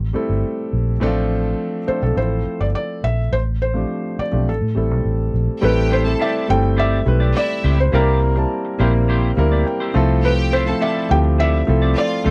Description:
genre	lush 1970s-style soul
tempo	104 BPM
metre	4/4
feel	straight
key	A minor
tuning	A4 = 440 Hz
part	vintage muted fingered electric bass	bass	0.0-12.3 s	G1 to A2	-20 LUFS	equal	none
part	warm concert grand piano	accompaniment	0.1-12.3 s	E3 to A5	-24 LUFS	equal	none
part	felt-muted upright piano	melody	1.9-12.3 s	A4 to G5	-25 LUFS	equal	none
part	bright studio string section	second line	5.6-12.3 s	E4 to A5	-30 LUFS	equal	none
part	clean electric guitar	riff	5.9-12.3 s	Bb3 to D5	-28 LUFS	equal	lush chorus
room	light reverb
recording	dry, close 1970s-style studio recording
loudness	-18 LUFS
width	mono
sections	0.0-5.6 A section; 5.6-12.3 B section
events	grand piano fill 9.4-10.2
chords	0.0 Am7; 1.0 Dm7/A; 2.2 Fmaj7; 3.3 G9sus4/A; 4.5 Am7; 7.9 C7; 9.9 Fmaj7/C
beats	0.43 | 1.01 1.59 2.17 2.74 | 3.32 3.90 4.47 5.05 | 5.62 6.20 6.78 7.36 | 7.93 8.51 9.08 9.66 | 10.24 10.81 11.39 11.96

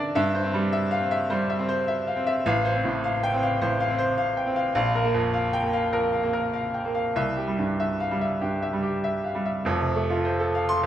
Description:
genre	classical, virtuoso piano study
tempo	95-106 BPM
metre	4/4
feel	rubato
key	F major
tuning	A4 = 439 Hz
part	bright baby grand piano	solo	0.0-10.9 s	F1 to C6	-22 LUFS	equal	none
room	wet recital hall reverb, RT60 1.4 s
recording	none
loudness	-22 LUFS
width	side -11 dB against mid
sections	0.0-9.6 A section; 9.6-10.9 B section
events	none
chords	0.2 C/G; 2.5 F/A; 4.8 Bb5; 7.2 C; 9.6 F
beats	| 0.16 0.72 1.30 1.88 | 2.46 3.04 3.61 4.18 | 4.75 5.33 5.93 6.54 | 7.16 7.79 8.42 9.04 | 9.65 10.25 10.84

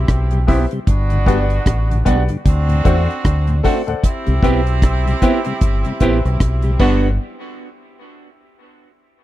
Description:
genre	roots reggae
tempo	76 BPM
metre	4/4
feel	swing 59% on 16ths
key	G major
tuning	A4 = 442 Hz
part	warm horn section	second line	0.0-7.1 s	D3 to G4	-25 LUFS	right 2 dB	dub echo
part	deep dub fingered electric bass	bass	0.0-7.2 s	G1 to E2	-16 LUFS	equal	none
part	deep reggae drum kit	drums	0.1-7.0 s	crash cymbal, hi-hat, kick drum, rim click	-16 LUFS	equal	none
part	mellow tonewheel organ	accompaniment	0.3-7.1 s	D2 to F#4	-24 LUFS	left 3 dB	slow rotary speaker
part	semi-hollow electric guitar	accompaniment	0.5-7.1 s	A3 to G4	-24 LUFS	right 6 dB	phaser, dub echo
part	warm upright piano	stabs	0.5-7.1 s	G3 to G5	-23 LUFS	left 7 dB	none
room	studio reverb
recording	dry, close 1970s-style studio recording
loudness	-14 LUFS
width	side -14 dB against mid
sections	0.0-7.2 A section; 7.2-9.2 B section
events	none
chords	0.0 Cmaj7; 0.9 Gmaj7; 2.5 D7; 4.0 Cmaj7; 6.8 Gmaj7; 7.2 N.C.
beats	0.08 | 0.87 1.66 2.45 3.24 | 4.03 4.82 5.61 6.40

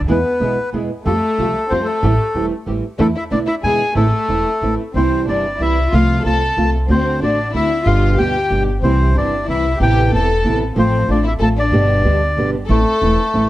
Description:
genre	tango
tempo	186 BPM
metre	3/4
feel	rubato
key	A minor, C major from 5.0 s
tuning	A4 = 440 Hz
part	upright bass	bass	0.0-13.5 s	E1 to F2	-18 LUFS	equal	none
part	bandoneon	melody	0.1-13.5 s	A3 to A5	-20 LUFS	left 1 dB	none
part	warm studio violin section	second line	0.1-13.5 s	A3 to A4	-22 LUFS	left 3 dB	analog delay
part	nylon-string guitar	accompaniment	0.1-13.5 s	B2 to G4	-20 LUFS	right 2 dB	none
part	muted studio string section	stabs	0.1-13.5 s	G3 to B4	-29 LUFS	right 4 dB	none
room	light reverb, studio ambience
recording	dark, warm production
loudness	-14 LUFS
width	side -15 dB against mid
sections	0.0-5.0 A section; 5.0-12.7 B section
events	none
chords	0.1 E; 1.1 Fadd9; 2.0 Am7; 3.0 E7sus4; 3.6 E7; 4.0 Am; 5.0 C; 5.9 F/C; 6.9 D7; 7.8 G; 8.8 C; 9.8 Amadd9; 10.8 F/A; 11.7 G; 12.7 Am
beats	| 0.08 0.40 0.72 | 1.05 1.38 1.70 | 2.03 2.35 2.67 | 2.99 3.31 3.64 | 3.96 4.29 4.62 | 4.95 5.28 5.60 | 5.92 6.25 6.57 | 6.89 7.21 7.53 | 7.85 8.17 8.49 | 8.82 9.15 9.48 | 9.80 10.12 10.45 | 10.77 11.08 11.40 | 11.72 12.04 12.37 | 12.69 13.02 13.34

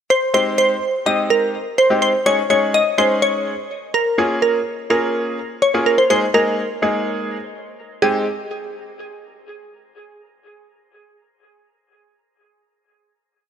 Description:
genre	pop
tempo	125 BPM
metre	4/4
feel	straight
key	Ab major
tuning	A4 = 440 Hz
part	glassy wavetable pluck	melody	0.1-8.2 s	Ab4 to Eb5	-17 LUFS	equal	chorus, dub echo
part	bright grand piano	accompaniment	0.3-8.2 s	Ab3 to Ab4	-21 LUFS	left 1 dB	none
room	moderate lush hall reverb, RT60 2.8 s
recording	none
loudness	-15 LUFS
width	side -8 dB against mid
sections	0.0-0.3 pickup bar; 0.3-8.0 verse; 8.0-9.9 final chord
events	none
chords	0.3 Abmaj7; 2.3 Dbsus2/Ab; 4.2 Bbm7; 6.1 Ebsus4; 8.0 Abmaj7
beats	| 0.34 0.82 1.30 1.78 | 2.26 2.74 3.22 3.70 | 4.18 4.66 5.14 5.62 | 6.10 6.58 7.06 7.54 | 8.02

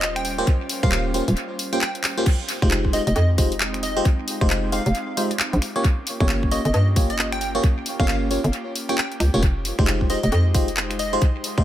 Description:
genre	UK garage, two-step garage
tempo	134 BPM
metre	4/4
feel	swing 61% on 16ths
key	F minor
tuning	A4 = 440 Hz
part	plucky unison lead	melody	0.0-11.1 s	Eb5 to G5	-30 LUFS	equal	dub echo
part	airy breathy pad	sustained chords	0.0-11.6 s	G3 to C5	-33 LUFS	equal	chorus, sidechain pumping
part	hollow knocking FM bass	bass	0.0-11.6 s	Eb1 to G2	-22 LUFS	equal	none
part	house drum kit	drums	0.0-11.6 s	crash cymbal, finger snaps, handclaps, hi-hat	-27 LUFS	left 1 dB	dub echo
part	FM electric piano	stabs	0.4-11.6 s	Ab3 to Db5	-26 LUFS	equal	chorus, phaser, tape echo
part	electronic kick drum	drums	0.5-11.6 s	none	-20 LUFS	equal	none
room	light reverb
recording	echo-heavy mix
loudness	-19 LUFS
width	side -12 dB against mid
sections	0.0-11.6 A section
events	break 1.4-2.3; drum fill 2.0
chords	0.0 Eb13; 2.3 Fm9; 5.6 Gm7b5; 9.4 Fm9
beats	0.02 | 0.47 0.92 1.37 1.81 | 2.26 2.71 3.16 3.60 | 4.05 4.50 4.95 5.40 | 5.84 6.29 6.74 7.19 | 7.63 8.08 8.53 8.98 | 9.43 9.87 10.32 10.77 | 11.22

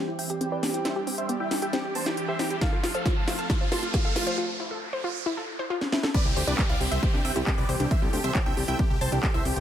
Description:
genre	uplifting trance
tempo	136 BPM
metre	4/4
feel	straight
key	C major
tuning	A4 = 441 Hz
part	big supersaw lead	melody	0.0-9.6 s	F4 to C6	-33 LUFS	right 1 dB	phaser, sidechain pumping, low-pass filter, digital delay
part	wide unison pluck	second line	0.0-9.6 s	F4 to C6	-36 LUFS	right 1 dB	sidechain pumping, ping-pong delay
part	wide unison pluck	arpeggios	0.0-9.5 s	B3 to C5	-33 LUFS	left 1 dB	sidechain pumping, ping-pong delay
part	riser, noise sweep and downlifter	sound effects	1.0-9.6 s	none	-36 LUFS	right 1 dB	none
part	analog string pad	sustained chords	0.2-9.6 s	E3 to A4	-35 LUFS	right 1 dB	ensemble chorus, sidechain pumping
part	techno drum kit	drums	0.2-9.6 s	crash cymbal, handclaps, hi-hat, snare drum	-31 LUFS	equal	overdrive, sidechain pumping on hats, sidechain pumping on cymbals
part	electronic kick drum	drums	2.6-9.3 s	none	-25 LUFS	equal	overdrive
part	fat analog bass	bass	6.3-9.6 s	C2 to D2	-28 LUFS	equal	sidechain pumping
room	light reverb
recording	none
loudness	-24 LUFS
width	side -10 dB against mid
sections	0.0-6.1 A section; 6.1-9.6 B section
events	build-up 0.0-6.1; drum fill 0.0-4.4, 5.8-6.1; filter sweep on supersaw synth 0.0-6.1; filter sweep on synth arpeggio sound 0.0-6.1; filter sweep on synth pluck 0.0-6.1; riser 1.0-4.4; break 4.4-6.1; noise sweep 4.4-6.1; drop 6.1-9.6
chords	0.0 C; 2.6 F; 6.1 C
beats	0.41 | 0.85 1.29 1.73 2.17 | 2.62 3.06 3.50 3.94 | 4.38 4.82 5.26 5.70 | 6.14 6.59 7.03 7.47 | 7.91 8.35 8.79 9.23

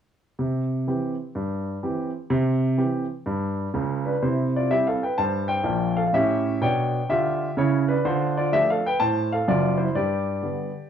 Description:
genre	jazz, stride piano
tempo	126 BPM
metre	4/4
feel	swing 64% on 8ths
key	C major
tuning	A4 = 439 Hz
part	warm grand piano	solo	0.4-10.9 s	F#1 to A5	-21 LUFS	equal	none
room	moderate studio reverb, RT60 0.7 s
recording	worn, warbling old tape, cassette tape, warbly pitch drift, small room ambience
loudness	-21 LUFS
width	side -8 dB against mid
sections	0.4-4.2 A section; 4.2-10.9 B section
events	none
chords	0.4 C; 6.1 A7; 8.0 Dm7; 10.0 G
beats	| 0.39 0.87 1.35 1.83 | 2.31 2.79 3.26 3.74 | 4.22 4.70 5.17 5.65 | 6.13 6.61 7.08 7.56 | 8.04 8.52 8.99 9.47 | 9.95 10.43

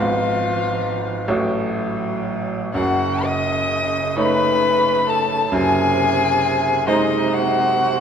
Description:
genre	classical, slow romantic movement for piano quartet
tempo	38-46 BPM (dotted quarters)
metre	6/8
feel	rubato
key	unclear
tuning	A4 = 444 Hz
part	rich violin	melody	0.0-8.0 s	D#5 to D#6	-21 LUFS	left 4 dB	none
part	rich cello	second line	0.0-8.0 s	B#2 to F#3	-26 LUFS	right 9 dB	none
part	warm violin	second line	0.0-8.0 s	D#4 to D#5	-23 LUFS	left 2 dB	none
part	bright concert grand piano	accompaniment	0.0-8.0 s	F#1 to C#5	-21 LUFS	right 1 dB	none
room	moderate scoring stage reverb, RT60 2.0 s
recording	none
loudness	-17 LUFS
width	side -7 dB against mid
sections	0.0-8.0 A section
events	none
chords	0.0 Fdim/Ab; 1.3 F#m/A; 2.7 D#m7b5/F#; 5.5 G#7/F#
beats	1.28 | 2.74 4.17 | 5.52 6.88

